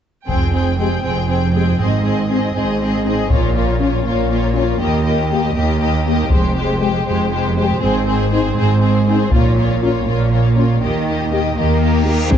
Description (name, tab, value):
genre	cinematic, epic orchestral film score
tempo	80 BPM (dotted quarters)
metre	6/8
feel	straight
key	F minor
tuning	A4 = 441 Hz
part	warm studio violin section	melody	0.3-12.4 s	C5 to G5	-26 LUFS	left 5 dB	none
part	warm symphonic violin section	second line	0.3-12.4 s	F4 to C5	-24 LUFS	left 5 dB	none
part	warm symphonic viola section	accompaniment	0.3-12.4 s	Ab3 to C5	-23 LUFS	right 2 dB	none
part	rich symphonic cello section	bass	0.3-12.4 s	Eb2 to C4	-20 LUFS	right 2 dB	none
part	rich symphonic double bass section	bass	0.3-12.4 s	F1 to F2	-19 LUFS	right 2 dB	none
part	taiko ensemble	drums	0.3-12.4 s	none	-18 LUFS	left 1 dB	none
part	dark French horn section	sustained chords	0.8-12.4 s	Ab3 to G4	-24 LUFS	left 6 dB	none
part	reverse cymbal and impact	sound effects	12.0-12.4 s	none	-21 LUFS	equal	none
room	moderate scoring stage reverb, RT60 2.2 s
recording	dark, warm production, nothing above 8.0 kHz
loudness	-14 LUFS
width	side -9 dB against mid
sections	0.3-12.3 A section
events	build-up 0.3-12.3; reverse cymbal 12.0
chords	0.3 Fmadd9; 1.8 Ab; 3.3 Bbm; 4.8 Eb; 6.3 Fmadd9; 7.8 Ab; 9.3 Bbm; 10.8 Eb